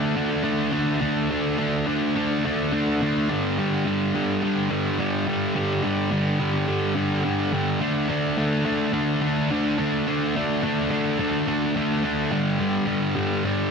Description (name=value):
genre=rock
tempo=106 BPM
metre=4/4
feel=straight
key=unclear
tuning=A4 = 441 Hz
part: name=fuzz guitar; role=solo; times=0.0-13.7 s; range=G2 to D4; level=-21 LUFS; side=equal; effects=distortion
room=light reverb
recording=dense, heavily limited modern master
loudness=-21 LUFS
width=side -5 dB against mid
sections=0.0-13.7 A section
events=none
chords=0.0 D5; 3.3 G5; 7.8 D5; 12.3 G5